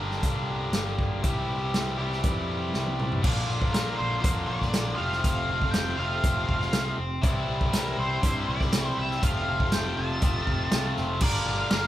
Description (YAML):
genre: classic rock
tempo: 120 BPM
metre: 4/4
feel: straight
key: unclear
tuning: A4 = 440 Hz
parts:
  - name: biting overdriven guitar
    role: riff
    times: 0.0-11.9 s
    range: F2 to Bb4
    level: -29 LUFS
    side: left 1 dB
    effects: none
  - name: growling picked electric bass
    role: bass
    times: 0.0-11.9 s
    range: F1 to G2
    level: -32 LUFS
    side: equal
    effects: overdrive
  - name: vintage drum kit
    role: drums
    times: 0.1-11.8 s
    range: crash cymbal, hi-hat, kick drum, ride cymbal, snare drum, toms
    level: -28 LUFS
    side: equal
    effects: none
  - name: octave-fuzz lead guitar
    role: melody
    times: 3.7-11.9 s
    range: Bb4 to A5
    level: -32 LUFS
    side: equal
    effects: distortion
room: moderate large studio reverb, RT60 1.1 s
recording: band playing live in one room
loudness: -24 LUFS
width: side -13 dB against mid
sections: 0.0-3.2 A section; 3.2-11.2 B section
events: drum fill 2.7-3.2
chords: 0.0 Gm; 1.2 C; 3.2 Bb; 5.0 F; 7.2 Cadd9; 9.2 F; 11.2 Gm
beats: 0.23 0.73 | 1.24 1.74 2.24 2.74 | 3.24 3.74 4.24 4.74 | 5.24 5.74 6.24 6.74 | 7.24 7.73 8.23 8.73 | 9.23 9.72 10.22 10.71 | 11.21 11.71